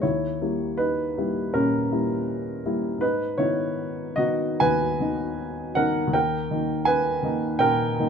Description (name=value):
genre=classical, romantic character piece for solo piano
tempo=80 BPM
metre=4/4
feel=rubato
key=unclear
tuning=A4 = 439 Hz
part: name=warm baby grand piano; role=solo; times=0.0-8.1 s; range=D#2 to G#5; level=-22 LUFS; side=equal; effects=none
room=light reverb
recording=minimal, uncompressed stereo recording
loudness=-22 LUFS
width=side -6 dB against mid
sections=0.0-8.1 A section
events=none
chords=0.0 D#7b9; 3.0 G#m; 6.1 D#